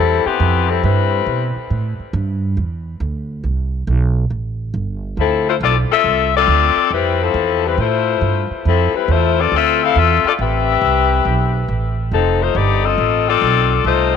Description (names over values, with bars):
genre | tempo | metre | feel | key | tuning
jazz, big band swing | 138 BPM | 4/4 | swing 66% on 8ths | A minor | A4 = 441 Hz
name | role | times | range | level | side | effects
clear saxophone section | melody | 0.0-1.5, 5.2-14.1 s | E3 to F5 | -15 LUFS | left 9 dB | tape echo
upright bass | bass | 0.0-14.2 s | F1 to B2 | -18 LUFS | right 2 dB | none
room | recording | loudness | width
light reverb, small room ambience | 1960s-style stereo | -14 LUFS | side -7 dB against mid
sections
0.0-14.2 A section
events
none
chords
0.0 Am9; 5.2 Dm9; 10.4 Am9; 12.1 F7